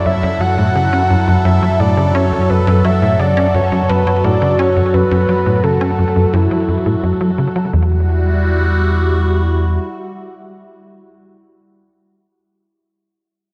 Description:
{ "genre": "ambient, sequencer-driven space music", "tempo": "86 BPM", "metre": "4/4", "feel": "straight", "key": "E dorian", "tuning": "A4 = 439 Hz", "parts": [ { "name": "breathy flute-like synth lead", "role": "melody", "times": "0.0-7.0 s", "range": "E4 to F#5", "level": "-21 LUFS", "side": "equal", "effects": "analog chorus, delay" }, { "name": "phased analog pad", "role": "sustained chords", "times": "0.0-11.1 s", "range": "F#3 to A4", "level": "-21 LUFS", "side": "equal", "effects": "phaser, chorus" }, { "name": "warm sub bass", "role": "bass", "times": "0.0-9.8 s", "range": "E2 to F#2", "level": "-20 LUFS", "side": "equal", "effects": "none" }, { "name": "tight sequencer bass", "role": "riff", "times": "0.1-8.1 s", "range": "E2 to C#4", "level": "-19 LUFS", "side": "equal", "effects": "subtle chorus, delay" } ], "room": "wet plate reverb, RT60 3.3 s", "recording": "lossy compression artefacts", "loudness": "-14 LUFS", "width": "mono", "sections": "0.0-7.7 A section; 7.7-10.5 B section", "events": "none", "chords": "0.0 F#m7; 7.7 Emadd9" }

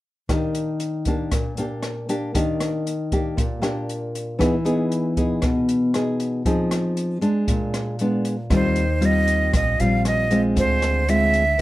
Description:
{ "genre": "bossa nova", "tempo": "117 BPM", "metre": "4/4", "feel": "straight", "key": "Eb major", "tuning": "A4 = 440 Hz", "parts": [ { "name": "nylon-string guitar", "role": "accompaniment", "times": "0.3-11.6 s", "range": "Bb2 to G#4", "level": "-21 LUFS", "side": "left 1 dB", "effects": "none" }, { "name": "open jazz drum kit", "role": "drums", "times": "0.3-11.6 s", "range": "hi-hat, kick drum, rim click", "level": "-26 LUFS", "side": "equal", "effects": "none" }, { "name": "breathy bright jazz flute", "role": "melody", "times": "8.5-11.6 s", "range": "C5 to F5", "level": "-21 LUFS", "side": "right 2 dB", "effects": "none" }, { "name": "upright bass", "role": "bass", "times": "8.5-11.5 s", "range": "Bb1 to Eb2", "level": "-23 LUFS", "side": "equal", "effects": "none" } ], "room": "moderate studio reverb, RT60 0.5 s", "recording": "none", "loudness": "-19 LUFS", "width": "side -16 dB against mid", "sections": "0.3-8.5 A section; 8.5-11.6 B section", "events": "none", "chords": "0.3 Ebmaj7; 4.4 Emaj7; 6.5 Fm7; 7.5 Bb7b9; 8.5 Eb69; 10.6 Dm7b5" }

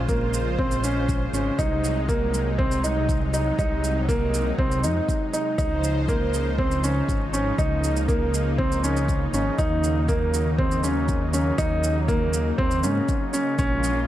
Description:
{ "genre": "piano and strings electronica", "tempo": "120 BPM", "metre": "4/4", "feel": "straight", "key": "Eb dorian", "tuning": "A4 = 440 Hz", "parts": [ { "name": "lush unison pad", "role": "sustained chords", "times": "0.0-14.1 s", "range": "C3 to C5", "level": "-30 LUFS", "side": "equal", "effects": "chorus, sidechain pumping" }, { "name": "dark detuned saw bass", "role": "bass", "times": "0.0-14.1 s", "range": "Ab1 to Ab2", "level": "-26 LUFS", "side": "equal", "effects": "sidechain pumping" }, { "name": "warm grand piano", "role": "riff", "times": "0.1-14.0 s", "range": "Bb3 to Eb4", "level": "-25 LUFS", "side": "right 1 dB", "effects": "ping-pong delay" }, { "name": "electronic kick drum", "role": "drums", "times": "0.1-13.7 s", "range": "none", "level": "-26 LUFS", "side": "equal", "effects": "overdrive" }, { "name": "shaker", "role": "drums", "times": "0.1-13.9 s", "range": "none", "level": "-34 LUFS", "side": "right 5 dB", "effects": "overdrive" } ], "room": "light reverb", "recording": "dark, warm production", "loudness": "-21 LUFS", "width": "side -13 dB against mid", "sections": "0.0-14.1 A section", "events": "none", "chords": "0.0 Bbm7; 1.6 Ab7/C; 5.6 Dbmaj9; 9.6 Ebm7" }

